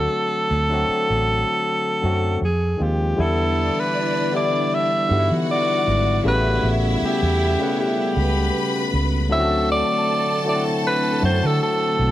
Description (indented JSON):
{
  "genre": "lush 1970s-style soul",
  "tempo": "78 BPM",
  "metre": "4/4",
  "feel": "swing 54% on 16ths",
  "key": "E minor",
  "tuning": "A4 = 441 Hz",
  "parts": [
    { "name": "breathy alto saxophone", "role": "melody", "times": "0.0-12.1 s", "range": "G4 to E5", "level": "-22 LUFS", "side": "right 1 dB", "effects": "none" },
    { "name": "barky tine electric piano", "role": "accompaniment", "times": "0.0-12.1 s", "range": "C#3 to F#5", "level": "-24 LUFS", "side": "left 3 dB", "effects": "overdrive" },
    { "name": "vintage muted fingered electric bass", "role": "bass", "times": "0.0-12.1 s", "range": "G#1 to E3", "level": "-22 LUFS", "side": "right 1 dB", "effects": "none" },
    { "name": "rich symphonic string section", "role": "second line", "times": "3.2-12.1 s", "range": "D4 to B5", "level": "-28 LUFS", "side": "equal", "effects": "none" },
    { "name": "string machine, full ensemble", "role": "sustained chords", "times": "3.2-12.1 s", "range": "C#3 to F#5", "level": "-30 LUFS", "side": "right 1 dB", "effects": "ensemble chorus" }
  ],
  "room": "light reverb, small room ambience",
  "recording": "none",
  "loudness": "-18 LUFS",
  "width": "side -13 dB against mid",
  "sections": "0.0-3.2 A section; 3.2-12.1 B section",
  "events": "none",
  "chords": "0.0 D7; 2.4 Fm7; 3.2 Em7; 6.2 A13; 9.3 D7"
}